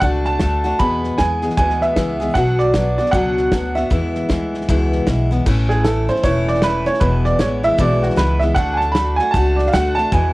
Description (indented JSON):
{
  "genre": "honky-tonk and classic country",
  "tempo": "155 BPM",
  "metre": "4/4",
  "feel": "swing 61% on 8ths",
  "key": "A major",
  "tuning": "A4 = 439 Hz",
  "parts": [
    { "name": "bright upright piano", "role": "second line", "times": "0.0-10.3 s", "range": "F#4 to B5", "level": "-19 LUFS", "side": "right 2 dB", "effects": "cassette tape" },
    { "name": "picked steel-string acoustic guitar", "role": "accompaniment", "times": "0.0-10.3 s", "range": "E2 to G#4", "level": "-20 LUFS", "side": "left 2 dB", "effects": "cassette tape" },
    { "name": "upright bass", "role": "bass", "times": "0.0-10.3 s", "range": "E1 to E2", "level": "-20 LUFS", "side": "equal", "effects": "none" },
    { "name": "natural country drum kit", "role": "drums", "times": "0.0-10.2 s", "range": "crash cymbal, hi-hat, kick drum, snare drum", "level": "-22 LUFS", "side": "equal", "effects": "cassette tape" }
  ],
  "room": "little or no reverb",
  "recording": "home recording on cassette",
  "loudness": "-15 LUFS",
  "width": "side -20 dB against mid",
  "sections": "0.0-5.5 A section; 5.5-10.3 B section",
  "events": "upright piano solo 0.0-5.5, 5.5-10.3",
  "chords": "0.0 D; 0.8 E; 2.4 Bm; 3.9 E; 5.5 A; 7.0 E; 8.6 D"
}